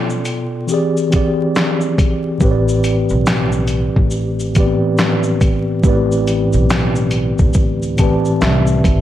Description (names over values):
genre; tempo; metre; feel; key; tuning
lo-fi hip hop; 70 BPM; 4/4; swing 62% on 16ths; A minor; A4 = 436 Hz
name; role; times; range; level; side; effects
mellow tine electric piano; accompaniment; 0.0-9.0 s; A2 to C6; -16 LUFS; equal; medium stereo tremolo, cassette tape
dusty soul sampler-style drum kit; drums; 0.1-9.0 s; handclaps, hi-hat, kick drum, shaker, snare drum; -17 LUFS; equal; none
upright bass; bass; 2.4-9.0 s; G#1 to D2; -19 LUFS; equal; none
room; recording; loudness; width
digital ambience; vinyl crackle; -13 LUFS; side -12 dB against mid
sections
0.0-9.0 A section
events
break 0.0-2.4; tine electric piano fill 7.5-9.0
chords
0.0 Bm7b5; 0.7 E7alt; 2.4 Am11